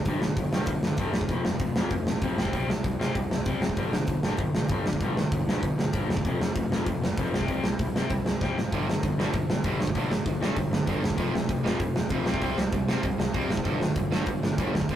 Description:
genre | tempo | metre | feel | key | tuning
punk rock | 194 BPM | 4/4 | straight | unclear | A4 = 444 Hz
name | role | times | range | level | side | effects
overdriven semi-hollow guitar | riff | 0.0-15.0 s | F2 to C4 | -29 LUFS | left 2 dB | none
fuzz picked electric bass | bass | 0.1-15.0 s | E1 to C3 | -35 LUFS | equal | none
big rock drum kit | drums | 0.1-15.0 s | hi-hat, kick drum, snare drum | -27 LUFS | equal | none
distorted electric guitar | riff | 8.7-15.0 s | F2 to C4 | -33 LUFS | right 7 dB | overdrive
room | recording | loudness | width
light reverb | rough rehearsal-room recording, tube saturation | -24 LUFS | side -11 dB against mid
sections
0.0-15.0 A section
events
drum fill 8.4-8.7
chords
0.0 G5; 1.3 F5; 2.4 C5; 3.8 G5; 6.2 F5; 7.3 C5; 8.7 G5; 11.2 F5; 12.3 C5; 13.7 G5

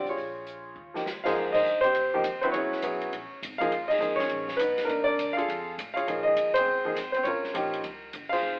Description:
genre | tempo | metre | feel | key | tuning
jazz piano trio | 203 BPM | 4/4 | swing 63% on 8ths | Ab major | A4 = 437 Hz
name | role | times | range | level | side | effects
warm concert grand piano | melody | 0.0-8.6 s | Ab2 to F5 | -25 LUFS | equal | none
upright bass | bass | 0.0-8.6 s | F1 to Bb2 | -47 LUFS | equal | none
open jazz drum kit | drums | 0.1-8.4 s | crash cymbal, hi-hat, kick drum, ride cymbal, snare drum | -38 LUFS | equal | none
room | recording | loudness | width
moderate stone room reverb, RT60 1.1 s | band playing live in one room, telephone sound | -25 LUFS | side -32 dB against mid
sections
0.0-1.4 A section; 1.4-8.6 B section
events
drum fill 0.8-1.4; band accent 1.5, 3.9, 8.3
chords
0.2 Bbm7; 0.8 Eb7(no3); 1.4 Abmaj7; 2.5 Dbm7; 3.1 Db6; 3.7 B6; 4.9 Cm9; 5.5 F; 6.1 Bbm9; 7.3 Gm7b5; 7.8 C5

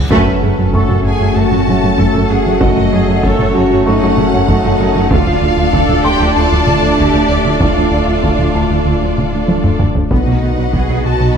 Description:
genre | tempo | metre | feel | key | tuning
cinematic, hybrid orchestral and electronic film score | 96 BPM | 4/4 | straight | unclear | A4 = 440 Hz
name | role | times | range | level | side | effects
dark analog pad | sustained chords | 0.0-11.4 s | F#3 to F#5 | -20 LUFS | left 4 dB | chorus, phaser
smooth gliding synth bass | riff | 0.0-11.3 s | D2 to F#3 | -18 LUFS | right 2 dB | none
punchy sub bass | bass | 0.0-11.4 s | D1 to C#2 | -22 LUFS | equal | none
reverse cymbal and impact | sound effects | 0.0-2.6 s | none | -24 LUFS | equal | none
felt-muted upright piano | texture | 0.0-11.4 s | A4 to F#6 | -27 LUFS | left 2 dB | none
rich symphonic violin section | melody | 0.1-11.4 s | C#5 to A5 | -21 LUFS | left 4 dB | none
rich studio violin section | second line | 0.1-11.4 s | A4 to D#5 | -23 LUFS | left 2 dB | none
warm symphonic viola section | accompaniment | 0.1-11.4 s | C#3 to F#4 | -19 LUFS | right 4 dB | none
clear trombone section | sustained chords | 0.1-11.4 s | F#2 to A3 | -23 LUFS | right 3 dB | none
warm French horn section | sustained chords | 0.1-11.4 s | B3 to F#4 | -23 LUFS | left 5 dB | none
clear symphonic double bass section | bass | 0.1-11.3 s | B1 to F#2 | -20 LUFS | right 3 dB | none
rich symphonic cello section | bass | 0.1-11.4 s | C#4 to B4 | -21 LUFS | right 2 dB | none
solo taiko drums | drums | 0.1-11.3 s | none | -18 LUFS | equal | none
room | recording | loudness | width
moderate scoring stage reverb, RT60 1.6 s | dark, warm production | -10 LUFS | side -7 dB against mid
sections
0.1-11.4 A section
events
band accent 0.1-0.7; impact 0.1-2.6; drum fill 9.5-10.1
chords
0.1 F#m; 5.1 Dm; 10.1 B

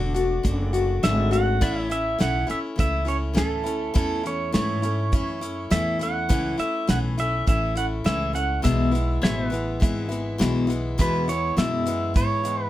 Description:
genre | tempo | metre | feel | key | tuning
honky-tonk and classic country | 102 BPM | 4/4 | straight | A major | A4 = 440 Hz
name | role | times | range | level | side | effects
pedal steel guitar | second line | 0.0-12.7 s | A4 to F#5 | -27 LUFS | right 2 dB | none
picked steel-string acoustic guitar | accompaniment | 0.0-12.7 s | E2 to F#4 | -26 LUFS | left 3 dB | none
pedal steel guitar | sustained chords | 0.0-12.7 s | B4 to E5 | -33 LUFS | right 1 dB | none
upright bass | bass | 0.0-12.7 s | E1 to G#2 | -27 LUFS | equal | none
damped 70s drum kit | drums | 0.2-12.6 s | hi-hat, kick drum, snare drum | -23 LUFS | equal | none
room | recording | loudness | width
light reverb | close, detailed microphones | -21 LUFS | side -14 dB against mid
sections
0.0-12.7 A section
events
pedal steel guitar solo 0.0-12.7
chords
0.0 D; 1.6 A; 8.6 E

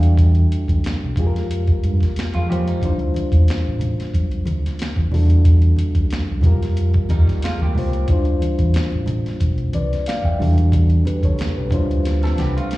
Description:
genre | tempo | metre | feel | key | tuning
R&B, neo-soul | 91 BPM | 4/4 | swing 54% on 16ths | unclear | A4 = 441 Hz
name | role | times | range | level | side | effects
mellow reed electric piano | accompaniment | 0.0-12.8 s | G3 to G5 | -25 LUFS | left 2 dB | fast tremolo, slapback echo
deep dub fingered electric bass | bass | 0.0-12.5 s | A1 to F3 | -17 LUFS | equal | none
boom bap sampler-style drum kit | drums | 0.0-12.8 s | finger snaps, hi-hat, kick drum, snare drum | -20 LUFS | equal | none
electric guitar through a small old amp | second line | 2.3-3.0, 7.1-8.1, 12.2-12.8 s | G3 to A4 | -28 LUFS | right 4 dB | slapback echo
congas | percussion | 3.1-12.8 s | none | -28 LUFS | equal | slapback echo
room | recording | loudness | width
little or no reverb | live gig heard through the venue's PA, recital hall reverb | -16 LUFS | side -18 dB against mid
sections
0.0-12.8 A section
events
drum fill 12.0-12.8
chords
0.0 Em11; 1.2 Fm11; 2.8 Dm11; 5.1 Em11; 6.4 Fm11; 8.1 Dm11; 10.4 Em11; 11.7 Dm11

